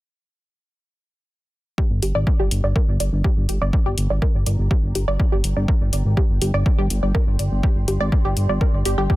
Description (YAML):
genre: melodic techno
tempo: 123 BPM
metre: 4/4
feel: straight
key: G minor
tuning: A4 = 439 Hz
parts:
  - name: wide unison pluck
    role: arpeggios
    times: 1.8-9.2 s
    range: G4 to D5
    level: -26 LUFS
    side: right 1 dB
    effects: sidechain pumping, dub echo
  - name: electronic kick drum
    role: drums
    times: 1.8-9.2 s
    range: none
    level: -19 LUFS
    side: equal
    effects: none
  - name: granular cloud pad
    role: texture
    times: 3.6-9.2 s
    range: G4 to C6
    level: -37 LUFS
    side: right 1 dB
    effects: built-in reverb, sidechain pumping
  - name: fat analog bass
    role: bass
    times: 1.9-9.1 s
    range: G1 to Ab1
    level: -21 LUFS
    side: equal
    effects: tube saturation, sidechain pumping
  - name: electronic hi-hat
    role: drums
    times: 2.0-9.0 s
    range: none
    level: -29 LUFS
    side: left 4 dB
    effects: overdrive, sidechain pumping on hats
room: digital ambience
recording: dense, heavily limited modern master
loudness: -17 LUFS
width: side -18 dB against mid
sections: 1.8-9.2 A section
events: fade-in on ambient pad 1.8-9.2; filter sweep on analog synth bass 1.8-9.2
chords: 1.8 Gm